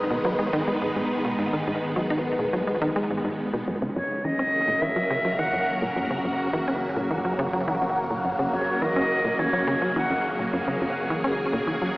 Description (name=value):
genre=ambient, sequencer-driven space music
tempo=105 BPM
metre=4/4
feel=straight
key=unclear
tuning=A4 = 441 Hz
part: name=phased string machine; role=sustained chords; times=0.0-12.0 s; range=C#3 to B4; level=-26 LUFS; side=equal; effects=ensemble chorus, phaser
part: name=analog drone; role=bass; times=0.0-12.0 s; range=F#1 to G#1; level=-49 LUFS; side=equal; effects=chorus
part: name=tight sequencer bass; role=riff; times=0.1-11.9 s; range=F#2 to D#4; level=-28 LUFS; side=equal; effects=vintage 12-bit sampler grit, tape echo
part: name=silver concert flute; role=melody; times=4.0-10.4 s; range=C#5 to F#5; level=-27 LUFS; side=equal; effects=tape echo
room=wet cathedral reverb, RT60 5.2 s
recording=in a vast, echoing space, AM radio sound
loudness=-23 LUFS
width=side -21 dB against mid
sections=0.0-12.0 A section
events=none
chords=0.0 G#m; 3.7 F#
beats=0.25 0.82 | 1.39 1.96 2.53 3.10 | 3.67 4.25 4.82 5.39 | 5.96 6.53 7.10 7.67 | 8.25 8.82 9.39 9.96 | 10.53 11.10 11.68